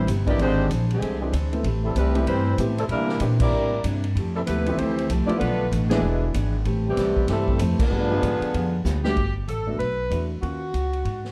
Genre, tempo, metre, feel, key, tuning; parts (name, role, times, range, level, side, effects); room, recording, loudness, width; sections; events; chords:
jazz, big band swing; 191 BPM; 4/4; swing 62% on 8ths; A4 = 440 Hz
warm saxophone section; melody; 0.0-11.3 s; D3 to D5; -30 LUFS; equal
clear trombone section; second line; 0.0-8.8 s; B2 to Bb4; -32 LUFS; equal
warm baby grand piano; accompaniment; 0.0-10.6 s; E3 to B4; -32 LUFS; equal
upright bass; bass; 0.0-11.3 s; E1 to C3; -27 LUFS; equal
picked steel-string acoustic guitar; accompaniment; 0.1-9.1 s; B2 to B4; -33 LUFS; equal
swinging big-band drum kit; drums; 0.1-11.3 s; crash cymbal, hi-hat, kick drum, ride cymbal, snare drum; -31 LUFS; equal
moderate large studio reverb, RT60 1.4 s; dark, warm production; -23 LUFS; mono
0.0-9.2 A section; 9.2-11.3 B section
band accent 3.4, 5.9, 7.8; drum fill 8.9-9.2
0.4 E7alt; 1.6 Am9; 2.9 C9; 4.2 Fmaj9; 5.4 Bm7b5; 6.0 E7; 6.7 Am9; 7.9 G7b9; 9.2 Gmaj7; 10.4 Ebm7